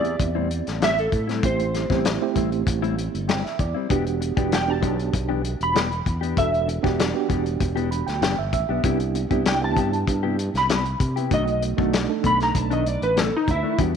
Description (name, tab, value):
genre	straight-eighth soul blues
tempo	97 BPM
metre	4/4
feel	straight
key	E minor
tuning	A4 = 441 Hz
part	mellow electric guitar	melody	0.0-13.8 s	D#4 to B5	-25 LUFS	right 1 dB	ensemble chorus
part	reed electric piano	accompaniment	0.0-14.0 s	G3 to B5	-26 LUFS	right 13 dB	fast tremolo
part	mellow electric guitar	stabs	0.0-14.0 s	A2 to G4	-29 LUFS	left 11 dB	wide subtle chorus
part	fingered electric bass	bass	0.0-14.0 s	E1 to C3	-27 LUFS	equal	none
part	warm soul drum kit	drums	0.0-14.0 s	hi-hat, kick drum, snare drum	-25 LUFS	left 3 dB	none
room	light reverb, studio reverb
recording	1960s-style stereo with parts hard left and right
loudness	-20 LUFS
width	side -7 dB against mid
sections	0.0-14.0 A section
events	reed electric piano fill 3.0-3.9, 7.6-8.8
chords	0.0 Am7; 3.9 Em7; 8.8 Cmaj7; 11.3 B7#9